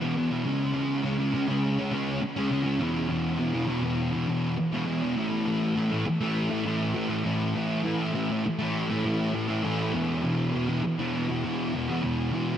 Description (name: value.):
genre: rock.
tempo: 101 BPM.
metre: 4/4.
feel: straight.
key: unclear.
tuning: A4 = 438 Hz.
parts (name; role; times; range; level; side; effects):
fuzz guitar; solo; 0.0-12.6 s; E2 to C#4; -25 LUFS; equal; distortion, ensemble chorus, analog delay.
room: wet huge ambient reverb, RT60 6.9 s.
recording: dreamy mix soaked in reverb.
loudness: -25 LUFS.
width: side -10 dB against mid.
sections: 0.0-5.2 A section; 5.2-12.6 B section.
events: none.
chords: 0.4 C#5; 2.8 E5; 5.2 A5; 9.9 E5.